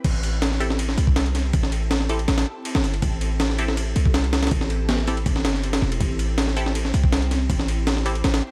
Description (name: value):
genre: drum and bass, jungle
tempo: 161 BPM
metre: 4/4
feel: straight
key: A minor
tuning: A4 = 439 Hz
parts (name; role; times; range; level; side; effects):
- ethereal airy pad; sustained chords; 0.0-8.5 s; C4 to C5; -35 LUFS; equal; ensemble chorus, built-in reverb, phaser, vintage 12-bit sampler grit
- warm 808-style bass; bass; 0.0-8.4 s; E1 to C2; -25 LUFS; equal; none
- breakbeat sampler-style drum kit; drums; 0.0-8.4 s; crash cymbal, kick drum, ride cymbal, snare drum; -25 LUFS; equal; none
- filtered dub chord stab; stabs; 0.6-8.2 s; C4 to A4; -34 LUFS; equal; phaser, dub echo
room: little or no reverb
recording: vinyl crackle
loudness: -22 LUFS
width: mono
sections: 0.0-8.5 A section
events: drop 0.0-8.5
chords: 0.0 Am7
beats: | 0.04 0.42 0.79 1.16 | 1.53 1.91 2.28 2.65 | 3.02 3.40 3.77 4.14 | 4.52 4.89 5.26 5.63 | 6.01 6.38 6.75 7.12 | 7.50 7.87 8.24